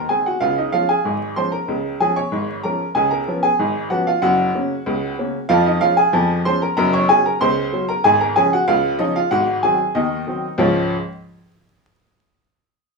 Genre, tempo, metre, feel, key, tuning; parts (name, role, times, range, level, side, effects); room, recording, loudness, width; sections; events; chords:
ragtime piano; 94 BPM; 2/4; straight; Db major; A4 = 439 Hz
clear upright piano; solo; 0.0-10.9 s; Gb1 to Db6; -16 LUFS; equal
wet studio reverb, RT60 0.8 s; band playing live in one room, vinyl crackle, small room ambience; -16 LUFS; side -3 dB against mid
0.0-10.6 A section; 10.6-11.9 B section
0.4 Db; 3.0 Db7; 4.2 Gb; 5.5 Db/F; 6.8 Gb; 8.0 Db/Ab; 9.3 Ab7; 10.6 Db